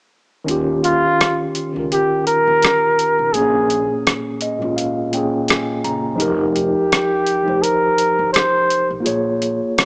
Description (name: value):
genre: lo-fi hip hop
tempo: 84 BPM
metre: 4/4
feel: swing 57% on 16ths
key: Bb dorian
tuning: A4 = 441 Hz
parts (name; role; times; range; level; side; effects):
- mellow tine electric piano; accompaniment; 0.4-9.8 s; Bb2 to Bb5; -19 LUFS; equal; medium stereo tremolo, low-pass filter
- upright bass; bass; 0.5-9.6 s; F1 to Eb2; -29 LUFS; equal; transformer saturation
- dusty soul sampler-style drum kit; drums; 0.5-9.8 s; hi-hat, rim click; -18 LUFS; equal; overdrive, vintage 12-bit sampler grit
- breathy flugelhorn; melody; 0.8-9.0 s; F4 to C5; -16 LUFS; equal; low-pass filter
room: light reverb, small room ambience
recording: dry, gritty hardware recording, small speaker sound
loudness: -15 LUFS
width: side -37 dB against mid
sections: 0.5-9.8 A section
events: kick muted 0.5-9.8; tine electric piano fill 4.0-6.2; break 9.0-9.8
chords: 0.5 Eb9; 3.3 Bbm7; 6.2 F9sus4; 9.0 Bbm7